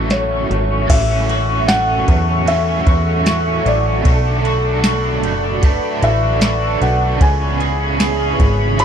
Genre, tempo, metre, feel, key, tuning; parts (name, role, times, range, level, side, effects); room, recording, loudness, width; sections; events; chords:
dream pop; 76 BPM; 4/4; straight; A major; A4 = 442 Hz
felt-muted upright piano; melody; 0.0-8.8 s; C#5 to B5; -21 LUFS; left 1 dB; ping-pong delay, shimmer reverb
biting overdriven guitar; accompaniment; 0.0-8.8 s; A2 to A4; -23 LUFS; right 4 dB; tremolo, ensemble chorus, shimmer reverb
warbly tape-like pad; sustained chords; 0.0-8.8 s; G#4 to C#6; -24 LUFS; right 2 dB; chorus, built-in reverb, phaser, shimmer reverb
clean electric guitar; arpeggios; 0.0-8.8 s; E3 to G#4; -22 LUFS; left 2 dB; wide subtle chorus, ping-pong delay, shimmer reverb
plucky analog bass; bass; 0.0-8.8 s; F#1 to E2; -19 LUFS; equal
soft vintage rhythm box; drums; 0.1-8.8 s; crash cymbal, hi-hat, kick drum, ride cymbal, snare drum, tambourine; -16 LUFS; equal
vibraphone with hard mallets; texture; 1.7-7.6 s; A4 to B4; -34 LUFS; left 2 dB
light reverb; dark, warm production; -13 LUFS; side -8 dB against mid
0.9-8.8 A section
0.0 A6; 4.1 Bm7; 7.2 C#m7